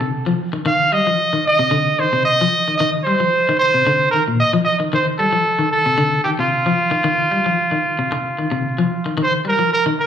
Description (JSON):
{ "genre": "afrobeat", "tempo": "113 BPM", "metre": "4/4", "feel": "straight", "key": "C dorian", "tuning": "A4 = 439 Hz", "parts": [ { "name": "bright trumpet", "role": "melody", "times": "0.0-10.1 s", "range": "F4 to F5", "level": "-16 LUFS", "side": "right 2 dB", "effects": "slapback echo" }, { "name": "electric guitar at the edge of break-up", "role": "arpeggios", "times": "0.0-10.0 s", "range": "Bb2 to G3", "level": "-20 LUFS", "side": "left 3 dB", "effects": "tremolo, slapback echo" } ], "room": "moderate plate reverb, RT60 2.7 s", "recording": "live gig heard through the venue's PA, club reverb", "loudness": "-15 LUFS", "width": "side -9 dB against mid", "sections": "0.0-9.7 A section", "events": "none", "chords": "0.0 Cmadd11", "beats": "0.14 0.67 | 1.20 1.73 2.27 2.80 | 3.33 3.86 4.40 4.93 | 5.46 5.99 6.53 7.06 | 7.59 8.12 8.66 9.19 | 9.72" }